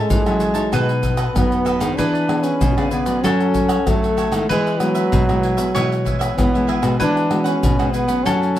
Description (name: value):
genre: samba and choro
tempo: 96 BPM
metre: 4/4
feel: straight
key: unclear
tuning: A4 = 441 Hz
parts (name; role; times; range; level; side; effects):
- breathy trombone; melody; 0.0-8.6 s; F#3 to D4; -20 LUFS; right 1 dB; none
- mandolin; second line; 0.0-8.6 s; A4 to C#5; -26 LUFS; left 4 dB; none
- cavaquinho; accompaniment; 0.0-8.6 s; D#4 to A5; -29 LUFS; right 5 dB; none
- nylon-string guitar; accompaniment; 0.0-8.6 s; F#2 to G#4; -25 LUFS; left 1 dB; none
- nylon-string guitar; bass; 0.1-8.6 s; B2 to B3; -23 LUFS; equal; none
- tube shaker, surdo, pandeiro and tamborim; percussion; 0.1-8.6 s; none; -22 LUFS; equal; none
room: moderate studio reverb, RT60 0.7 s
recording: none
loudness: -16 LUFS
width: side -12 dB against mid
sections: 0.0-8.6 A section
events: none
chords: 0.0 Amaj7; 0.7 B7; 2.0 E7; 3.2 F#m; 4.5 E; 7.0 Eadd9